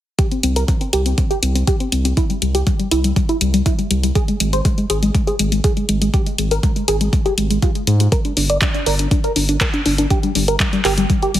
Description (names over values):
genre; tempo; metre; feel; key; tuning
progressive house; 121 BPM; 4/4; straight; unclear; A4 = 440 Hz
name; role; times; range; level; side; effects
tight sequenced synth; arpeggios; 0.2-11.4 s; G3 to D5; -20 LUFS; left 1 dB; chorus, vintage 12-bit sampler grit, sidechain pumping, digital delay
electronic kick drum; drums; 0.2-11.2 s; none; -18 LUFS; equal; studio reverb
house drum kit; drums; 0.2-11.4 s; handclaps, hi-hat; -22 LUFS; left 1 dB; sidechain pumping on hats, studio reverb
saturated sub bass; bass; 0.4-11.4 s; G1 to Ab2; -18 LUFS; equal; tube saturation, sidechain pumping
room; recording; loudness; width
light reverb, digital ambience; heavily compressed radio sound, multiband compression; -15 LUFS; side -12 dB against mid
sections
0.2-11.4 A section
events
filter sweep on synth arpeggio sound 0.2-11.4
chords
0.2 C5; 4.2 N.C.; 8.1 G5